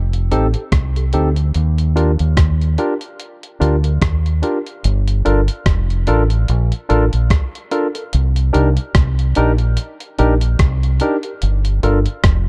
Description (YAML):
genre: lovers rock reggae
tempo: 73 BPM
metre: 4/4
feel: swing 57% on 16ths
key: G minor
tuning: A4 = 440 Hz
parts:
  - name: deep dub fingered electric bass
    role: bass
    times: 0.0-12.5 s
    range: F1 to Eb2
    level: -17 LUFS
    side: equal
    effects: none
  - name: clean 12-bit digital drum machine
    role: drums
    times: 0.1-12.5 s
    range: hi-hat, kick drum, rim click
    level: -20 LUFS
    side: equal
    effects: none
  - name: barky tine electric piano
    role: accompaniment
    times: 0.3-12.0 s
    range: C4 to Bb4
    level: -22 LUFS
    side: equal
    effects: overdrive
room: little or no reverb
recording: dark, warm production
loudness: -16 LUFS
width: mono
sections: 0.0-4.8 A section; 4.8-12.5 B section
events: none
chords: 0.0 F7; 1.5 Ebmaj9; 4.8 Gm7; 8.1 Cm7; 11.4 Gm7